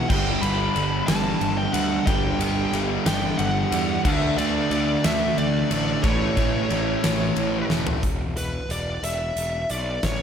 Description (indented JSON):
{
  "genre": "quiet-loud alternative rock",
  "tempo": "60 BPM (dotted quarters)",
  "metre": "6/8",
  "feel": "straight",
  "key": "unclear",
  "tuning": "A4 = 441 Hz",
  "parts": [
    { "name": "smooth overdriven lead guitar", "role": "melody", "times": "0.0-10.2 s", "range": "B4 to B5", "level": "-27 LUFS", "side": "equal", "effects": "tape echo" },
    { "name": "cranked stack guitar", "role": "riff", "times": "0.0-8.0 s", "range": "G2 to D4", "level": "-30 LUFS", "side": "left 9 dB", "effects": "overdrive" },
    { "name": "crunchy overdriven guitar", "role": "riff", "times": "0.0-8.0 s", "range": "G2 to D4", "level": "-30 LUFS", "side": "right 1 dB", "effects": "slapback echo" },
    { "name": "fuzz guitar", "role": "riff", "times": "0.0-8.0 s", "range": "G2 to D4", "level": "-28 LUFS", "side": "right 9 dB", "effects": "distortion" },
    { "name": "fuzz picked electric bass", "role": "bass", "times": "0.0-10.2 s", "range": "E1 to E2", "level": "-28 LUFS", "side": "equal", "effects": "overdrive" },
    { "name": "huge arena drum kit", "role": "drums", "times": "0.1-10.2 s", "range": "crash cymbal, hi-hat, kick drum, ride cymbal, snare drum, toms", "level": "-26 LUFS", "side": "left 1 dB", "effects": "none" }
  ],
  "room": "moderate lush hall reverb, RT60 2.6 s",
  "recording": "big arena sound",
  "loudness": "-20 LUFS",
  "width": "side -8 dB against mid",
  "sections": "0.0-8.0 A section; 8.0-10.2 B section",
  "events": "drum fill 7.7-8.0; half time 8.0-10.2",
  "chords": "0.1 G5; 4.1 D5; 6.0 A; 8.0 E5"
}